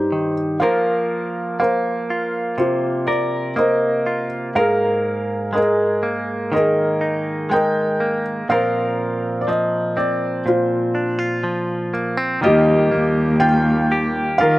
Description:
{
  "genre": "acoustic folk-pop ballad",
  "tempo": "61 BPM",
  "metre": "4/4",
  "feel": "straight",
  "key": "unclear",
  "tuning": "A4 = 441 Hz",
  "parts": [
    { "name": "felt-muted upright piano", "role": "melody", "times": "0.0-14.6 s", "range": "Eb4 to G5", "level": "-19 LUFS", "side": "equal", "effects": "slapback echo" },
    { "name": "direct-recorded clean electric guitar", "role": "accompaniment", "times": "0.0-14.6 s", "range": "G2 to Bb4", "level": "-22 LUFS", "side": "right 1 dB", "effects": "none" },
    { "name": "warm cello", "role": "bass", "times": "12.4-14.6 s", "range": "Eb2 to Eb3", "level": "-18 LUFS", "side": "equal", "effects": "none" }
  ],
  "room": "little or no reverb",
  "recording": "recorded outdoors, with no room sound",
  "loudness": "-17 LUFS",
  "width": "side -17 dB against mid",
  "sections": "0.0-12.4 A section; 12.4-14.6 B section",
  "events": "none",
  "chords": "0.0 Cm; 0.6 Fsus4; 4.6 Absus2; 8.5 Bbsus2; 12.4 Ebadd9"
}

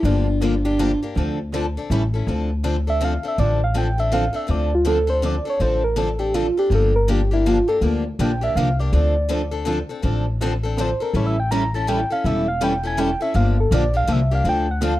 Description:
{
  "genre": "acoustic string swing (jazz manouche)",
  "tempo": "162 BPM",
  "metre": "3/4",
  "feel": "swing 62% on 8ths",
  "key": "D minor",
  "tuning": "A4 = 440 Hz",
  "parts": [
    { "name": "soft struck synth lead", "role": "melody", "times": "0.0-15.0 s", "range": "D4 to Bb5", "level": "-22 LUFS", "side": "right 1 dB", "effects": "chorus" },
    { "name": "picked old ladder-braced acoustic guitar", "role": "accompaniment", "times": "0.0-14.9 s", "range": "D3 to A4", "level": "-28 LUFS", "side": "right 5 dB", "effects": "none" },
    { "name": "picked steel-string acoustic guitar", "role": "accompaniment", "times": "0.0-14.9 s", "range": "D3 to A4", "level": "-26 LUFS", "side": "left 5 dB", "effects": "none" },
    { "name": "upright bass", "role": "bass", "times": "0.0-15.0 s", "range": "E1 to D2", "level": "-21 LUFS", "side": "equal", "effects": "none" },
    { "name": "picked steel-string acoustic guitar", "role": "second line", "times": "0.1-1.0 s", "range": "F4", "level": "-38 LUFS", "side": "right 3 dB", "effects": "none" }
  ],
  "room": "studio reverb",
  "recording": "dry, close 1970s-style studio recording",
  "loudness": "-18 LUFS",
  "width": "side -15 dB against mid",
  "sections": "0.0-2.3 A section; 2.3-15.0 B section",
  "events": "soft synth lead solo 2.3-15.0",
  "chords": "0.0 Gm7; 1.2 Dm7; 1.9 A7; 2.3 Dm7; 6.7 Gm7; 8.9 Dm7; 11.1 A7; 13.3 Gm7; 14.5 Dm7"
}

